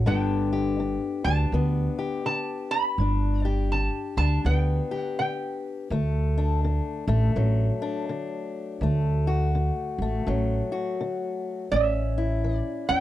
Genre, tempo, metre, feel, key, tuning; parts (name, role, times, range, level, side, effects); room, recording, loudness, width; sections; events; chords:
acoustic country blues, solo or duo; 82 BPM; 4/4; swing 61% on 8ths; D major; A4 = 440 Hz
fingerpicked old ladder-braced acoustic guitar; accompaniment; 0.0-13.0 s; D2 to G4; -29 LUFS; left 5 dB
upright bass; bass; 0.0-13.0 s; G1 to E2; -24 LUFS; right 1 dB
lap resonator guitar; melody; 0.1-5.9, 11.7-13.0 s; E5 to B5; -28 LUFS; right 4 dB
light reverb; dry, close 1970s-style studio recording; -23 LUFS; side -14 dB against mid
0.0-13.0 A section
0.1 G; 5.9 D; 11.7 A